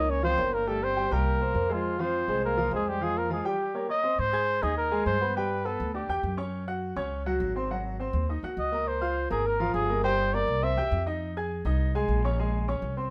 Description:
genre	jazz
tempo	205 BPM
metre	4/4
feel	straight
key	F minor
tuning	A4 = 440 Hz
part	breathy trumpet	melody	0.0-6.4, 8.6-11.1 s	F4 to E5	-30 LUFS	equal	none
part	breathy trombone	second line	0.0-3.9 s	F3 to Eb4	-37 LUFS	equal	none
part	clear baby grand piano	accompaniment	0.0-13.1 s	F3 to Ab6	-33 LUFS	equal	none
part	upright bass	bass	0.0-13.1 s	G1 to Ab2	-33 LUFS	equal	none
room	moderate studio reverb, RT60 0.9 s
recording	none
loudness	-28 LUFS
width	mono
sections	0.0-4.2 A section; 4.2-13.1 B section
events	none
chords	0.0 Gbmaj7 (rootless); 0.7 Gmadd11; 1.3 C5; 1.8 Fmadd9; 3.6 Eb7; 4.2 Ab; 5.4 G; 6.5 Gbsus2; 7.7 Ab7; 8.9 Db6; 10.0 Gm; 10.6 C; 11.2 Fm7; 12.4 Bbm7

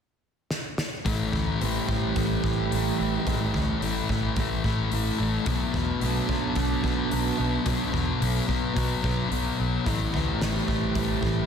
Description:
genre	rock, shoegaze and dream pop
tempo	109 BPM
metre	4/4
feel	straight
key	A minor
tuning	A4 = 438 Hz
part	loose indie drum kit	drums	0.5-11.4 s	hi-hat, kick drum, snare drum	-31 LUFS	equal	none
part	clean electric guitar	riff	1.0-11.5 s	A2 to A4	-32 LUFS	right 9 dB	reverse reverb
part	thick fuzz guitar	riff	1.0-11.5 s	A2 to B3	-26 LUFS	left 4 dB	distortion, wide subtle chorus
part	vintage muted fingered electric bass	bass	1.1-11.4 s	A1 to E2	-30 LUFS	right 1 dB	none
room	wet cathedral reverb, RT60 5.6 s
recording	dreamy mix soaked in reverb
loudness	-24 LUFS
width	side -7 dB against mid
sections	0.0-1.1 A section; 1.1-11.5 B section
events	drum fill 0.5-1.1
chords	0.0 N.C.; 1.1 Am7; 5.5 Bm7; 9.9 Am7

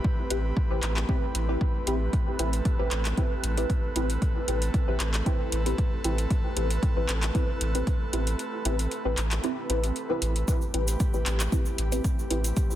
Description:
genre	dub techno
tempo	115 BPM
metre	4/4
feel	swing 53% on 16ths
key	A minor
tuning	A4 = 440 Hz
part	airy breathy pad	sustained chords	0.0-12.8 s	A3 to B4	-37 LUFS	right 1 dB	chorus, sidechain pumping
part	electronic kick drum	drums	0.0-12.7 s	none	-26 LUFS	equal	overdrive
part	wind-like tuned noise texture	texture	0.0-12.8 s	G4 to B4	-40 LUFS	right 1 dB	built-in reverb, sidechain pumping
part	deep mellow chord stab	stabs	0.3-12.4 s	C4 to B4	-32 LUFS	equal	chorus, phaser, sidechain pumping, dub echo
part	warm sub bass	bass	0.3-12.5 s	A1	-28 LUFS	equal	sidechain pumping
part	deep house drum kit	drums	0.3-12.7 s	handclaps, hi-hat	-32 LUFS	left 1 dB	overdrive
part	tube shaker	percussion	10.5-12.8 s	none	-39 LUFS	right 2 dB	none
room	light reverb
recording	dense, heavily limited modern master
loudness	-24 LUFS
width	side -12 dB against mid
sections	0.0-10.5 A section; 10.5-12.8 A section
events	kick drops out 8.4-10.5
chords	0.0 Am9

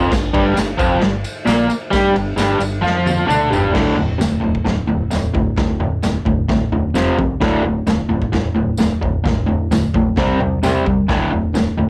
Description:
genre	garage rock duo or trio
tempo	131 BPM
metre	4/4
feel	straight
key	D minor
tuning	A4 = 442 Hz
part	raw garage guitar	riff	0.0-11.9 s	D2 to G4	-19 LUFS	equal	overdrive, cassette tape
part	growling fingered electric bass	bass	0.0-11.9 s	D1 to G2	-27 LUFS	equal	overdrive
part	raw garage drum kit	drums	0.1-11.9 s	crash cymbal, kick drum, ride cymbal, snare drum, toms	-23 LUFS	equal	vintage 12-bit sampler grit
part	tambourine	percussion	0.1-11.7 s	none	-38 LUFS	equal	none
room	moderate small room reverb, RT60 0.5 s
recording	home recording on cassette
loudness	-17 LUFS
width	mono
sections	0.0-3.7 A section; 3.7-11.9 B section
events	drum fill 2.8-3.7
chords	0.1 G5; 3.7 D5; 7.0 F5; 7.4 D5; 10.2 C5; 11.1 D5

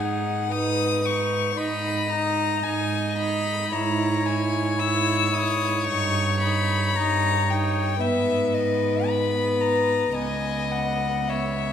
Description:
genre	classical, slow romantic movement for string quartet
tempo	56 BPM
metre	4/4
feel	rubato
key	G# minor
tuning	A4 = 440 Hz
part	warm violin	melody	0.0-11.7 s	D#5 to E6	-26 LUFS	left 8 dB	none
part	rich violin	second line	0.0-11.7 s	G#4 to D#5	-26 LUFS	left 3 dB	none
part	warm viola	accompaniment	0.0-11.7 s	B3 to E4	-29 LUFS	right 3 dB	none
part	warm cello	bass	0.0-11.7 s	C#2 to G#2	-27 LUFS	right 4 dB	none
room	wet recital hall reverb, RT60 1.5 s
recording	none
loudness	-21 LUFS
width	side -8 dB against mid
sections	0.0-11.7 A section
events	none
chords	0.0 G#m; 3.7 C#m/G#; 5.9 D#7/G; 8.0 G#m; 10.2 C#m7

